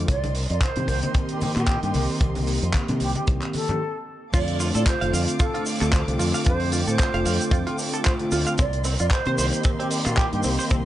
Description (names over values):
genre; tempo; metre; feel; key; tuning
nu-disco, nu disco; 113 BPM; 4/4; swing 56% on 16ths; F mixolydian; A4 = 440 Hz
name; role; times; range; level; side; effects
mellow synth brass; accompaniment; 0.0-10.8 s; D3 to G4; -27 LUFS; equal; chorus, slapback echo
warm studio violin section; sustained chords; 0.0-10.8 s; Bb3 to D6; -35 LUFS; left 1 dB; sidechain pumping
fingered electric bass with an envelope filter; bass; 0.0-10.8 s; F1 to C3; -25 LUFS; equal; none
mellow concert flute; melody; 0.1-10.5 s; G4 to D5; -30 LUFS; right 2 dB; tape echo
damped 70s drum kit; drums; 0.1-10.8 s; crash cymbal, handclaps, hi-hat, shaker; -30 LUFS; right 1 dB; none
kick drum; drums; 0.1-10.8 s; none; -22 LUFS; equal; none
egg shaker and congas; percussion; 0.1-3.8 s; none; -31 LUFS; left 2 dB; none
direct-recorded clean electric guitar; riff; 4.3-10.8 s; C4 to F5; -31 LUFS; right 3 dB; lush chorus, slapback echo
room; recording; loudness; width
light reverb, studio ambience; nothing above 10.5 kHz; -20 LUFS; side -13 dB against mid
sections
0.0-4.3 A section; 4.3-10.8 B section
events
break 3.8-4.3; drop 4.3-10.8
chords
0.1 Cm7; 4.3 F6; 8.6 Cm7